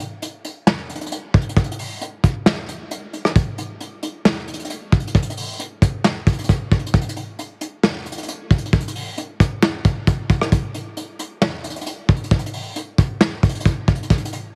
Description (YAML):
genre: hip hop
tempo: 134 BPM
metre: 4/4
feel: half-time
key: none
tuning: none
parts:
  - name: vintage brush drum kit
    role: drums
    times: 0.0-14.4 s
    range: hi-hat, kick drum, rim click, snare drum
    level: -20 LUFS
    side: equal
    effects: none
room: little or no reverb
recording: heavily compressed radio sound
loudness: -20 LUFS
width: mono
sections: 0.0-3.4 A section; 3.4-14.6 A section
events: kick muted 2.5-3.4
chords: none